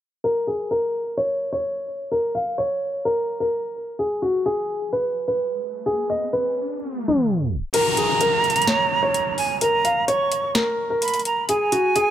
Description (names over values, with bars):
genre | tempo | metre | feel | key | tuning
hip hop, trap | 128 BPM | 4/4 | half-time | Bb phrygian | A4 = 441 Hz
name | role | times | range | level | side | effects
dark baby grand piano | melody | 0.2-12.1 s | Gb4 to F5 | -22 LUFS | left 1 dB | low-pass filter
riser and downlifter | sound effects | 5.9-11.5 s | none | -29 LUFS | left 1 dB | none
jazz flute | second line | 7.7-12.1 s | Ab5 to Db6 | -22 LUFS | right 4 dB | digital delay
booming analog drum machine | drums | 7.7-12.1 s | crash cymbal, hi-hat, snare drum | -25 LUFS | left 1 dB | none
room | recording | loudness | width
light reverb | low-pass filter, tape stop | -20 LUFS | side -11 dB against mid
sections
0.2-7.7 A section; 7.7-12.1 B section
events
filter sweep 0.2-7.7; riser 5.9-7.7; tape stop 6.8-7.7; kick muted 7.7-12.1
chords
none